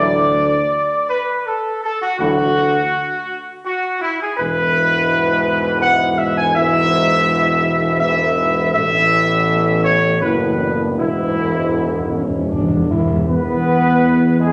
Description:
classical; 82 BPM; 3/4; straight; E mixolydian; A4 = 441 Hz
warm trumpet section; melody; 0.0-14.5 s; E4 to G#5; -19 LUFS; equal
mellow French horn section; sustained chords; 0.0-14.5 s; F#3 to E4; -27 LUFS; equal
warm trombone section; sustained chords; 0.0-14.5 s; G#2 to B3; -24 LUFS; equal
warm tuba; bass; 0.0-14.5 s; E1 to E2; -23 LUFS; equal
timpani; percussion; 11.0-13.2 s; E2; -24 LUFS; equal
wet recital hall reverb, RT60 1.3 s; nothing above 10.8 kHz; -17 LUFS; mono
0.0-13.3 A section; 13.3-14.5 B section
timpani fill 11.0-13.3
0.0 Dadd9; 4.4 E; 8.7 Aadd9; 11.0 E
0.72 1.46 | 2.19 2.93 3.66 | 4.39 5.11 5.83 | 6.56 7.28 8.01 | 8.74 9.47 10.21 | 10.98 11.75 12.51 | 13.29 14.03

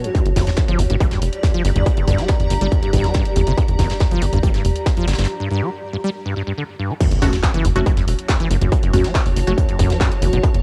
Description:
driving peak-time techno; 140 BPM; 4/4; straight; A4 = 439 Hz
acid bass, saw; riff; 0.0-10.5 s; F#1 to G3; -26 LUFS; equal; analog chorus, sidechain pumping, tape echo
techno drum kit; drums; 0.0-10.6 s; crash cymbal, handclaps, hi-hat, toms; -27 LUFS; equal; overdrive
granular cloud pad; texture; 0.0-10.6 s; F#4 to Bb5; -29 LUFS; equal; built-in reverb, sidechain pumping
electronic kick drum; drums; 0.1-10.5 s; -20 LUFS; equal; distortion, overdrive
soft brush drum kit; drums; 0.2-10.5 s; hi-hat, snare drum; -35 LUFS; equal; high-pass filter on hats, high-pass filter on snare, high-pass filter on room
tight sequencer bass; bass; 0.3-10.6 s; E1 to G1; -22 LUFS; equal; sidechain pumping
impact; sound effects; 7.0-8.7 s; -31 LUFS; equal
wavetable chord stab; stabs; 7.2-9.6 s; A3 to F#4; -27 LUFS; equal; sidechain pumping, tape echo
digital ambience; home recording on cassette; -18 LUFS; mono
0.0-7.0 A section; 7.0-10.6 B section
break 5.3-7.0; drop 7.0-10.6; impact 7.0-8.7
0.1 Gm; 7.0 F#m
| 0.15 0.58 1.00 1.43 | 1.86 2.29 2.72 3.15 | 3.58 4.00 4.43 4.86 | 5.29 5.72 6.15 6.58 | 7.00 7.43 7.86 8.29 | 8.72 9.15 9.58 10.01 | 10.43

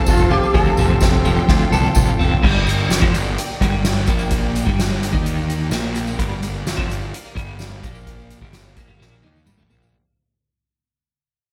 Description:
psychedelic rock; 128 BPM; 4/4; straight; G minor; A4 = 440 Hz
sitar; melody; 0.0-1.9 s; F4 to A4; -24 LUFS; equal; slapback echo
bright studio string section; sustained chords; 0.0-9.9 s; Bb3 to A5; -32 LUFS; equal
clean electric guitar; riff; 0.0-9.9 s; F2 to A4; -24 LUFS; equal; tremolo, double-tracked
fuzz picked electric bass; bass; 0.1-9.9 s; F1 to Eb2; -24 LUFS; equal; overdrive
soft-mallet drum kit; drums; 0.1-9.9 s; crash cymbal, hi-hat, kick drum, snare drum, toms; -22 LUFS; equal
tambourine; percussion; 0.1-9.9 s; -38 LUFS; equal
light reverb, small room ambience; -18 LUFS; mono
0.0-2.4 A section; 2.4-9.9 B section
drum fill 1.5-2.4, 9.0-9.9; fade-out 2.4-9.9
0.0 F; 2.4 Gm
0.08 | 0.55 1.02 1.49 1.96 | 2.43 2.90 3.37 3.84 | 4.31 4.78 5.25 5.72 | 6.19 6.66 7.13 7.60 | 8.07 8.54 9.01 9.47

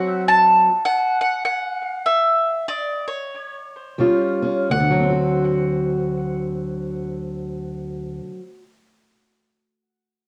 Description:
acoustic country blues, solo or duo; 82-106 BPM; 4/4; swing 62% on 8ths; D mixolydian; A4 = 441 Hz
mandolin; melody; 0.0-7.8 s; C#5 to A5; -21 LUFS; equal; cassette tape, analog delay
fingerpicked steel-string acoustic guitar; accompaniment; 0.0-8.6 s; D2 to F#4; -23 LUFS; equal
moderate spring reverb, RT60 1.4 s; home recording on cassette; -20 LUFS; mono
0.0-4.7 A section; 4.7-7.6 B section
slowing down 0.0-4.7; stop 0.0-4.0
0.0 D7 (rootless); 4.0 Eb9; 4.7 D7
0.28 0.86 1.45 | 2.05 2.67 3.32 4.00 | 4.71 5.44 6.17 6.90

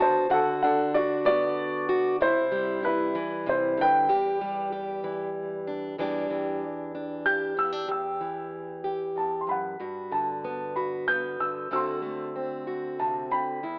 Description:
acoustic folk-pop ballad; 94 BPM; 3/4; straight; E minor; A4 = 440 Hz
warm baby grand piano; melody; 0.0-13.8 s; E4 to G6; -25 LUFS; equal
fingerpicked plugged-in steel-string acoustic guitar; accompaniment; 0.0-13.8 s; E2 to G4; -29 LUFS; equal
moderate spring reverb, RT60 2.4 s; worn, warbling old tape, cassette tape, warbly pitch drift, AM radio sound; -25 LUFS; side -33 dB against mid
0.0-6.0 A section; 6.0-7.9 B section; 7.9-13.8 C section
0.0 Bm7/D; 2.2 C; 4.1 Em7; 7.9 Em; 9.8 Gmaj7; 11.7 D7
| 0.29 0.93 1.56 | 2.19 2.82 3.45 | 4.08 4.72 5.35 | 5.99 6.62 7.26 | 7.89 8.53 9.17 | 9.80 10.44 11.08 | 11.71 12.35 12.99 | 13.62

